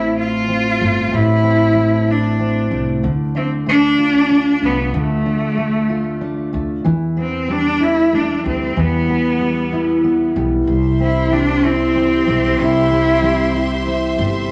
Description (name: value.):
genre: six-eight pop ballad.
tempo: 63 BPM (dotted quarters).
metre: 6/8.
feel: straight.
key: C major.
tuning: A4 = 439 Hz.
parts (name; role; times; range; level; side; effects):
clear cello; melody; 0.0-13.9 s; A3 to F4; -20 LUFS; equal; none.
fingerpicked steel-string acoustic guitar; accompaniment; 0.0-14.5 s; A2 to F4; -21 LUFS; equal; none.
upright bass; bass; 0.0-14.5 s; G1 to E2; -25 LUFS; equal; none.
warm studio string section; sustained chords; 10.7-14.5 s; G4 to C6; -27 LUFS; equal; none.
room: moderate large studio reverb, RT60 1.2 s.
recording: none.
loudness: -17 LUFS.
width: mono.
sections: 0.0-14.5 A section.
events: none.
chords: 0.0 Am; 3.0 Dm; 6.9 Em; 10.7 C.